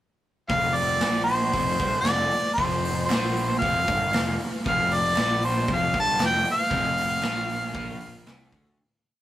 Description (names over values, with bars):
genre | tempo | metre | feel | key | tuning
garage rock duo or trio | 116 BPM | 4/4 | straight | unclear | A4 = 440 Hz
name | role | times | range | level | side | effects
clear harmonica | melody | 0.5-8.3 s | C5 to A5 | -24 LUFS | equal | overdrive
crunchy overdriven guitar | riff | 0.5-8.8 s | F2 to D3 | -31 LUFS | left 2 dB | none
fuzz picked electric bass | bass | 0.5-8.8 s | F1 to D2 | -31 LUFS | equal | overdrive, tube saturation
raw garage drum kit | drums | 0.5-8.7 s | hi-hat, kick drum, snare drum | -29 LUFS | equal | none
group handclap | percussion | 1.0-8.4 s | none | -40 LUFS | right 3 dB | none
room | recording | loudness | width
moderate stone room reverb, RT60 1.1 s | rough rehearsal-room recording | -21 LUFS | side -13 dB against mid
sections
0.5-8.8 pre-chorus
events
fade-out 6.7-8.8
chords
0.5 F5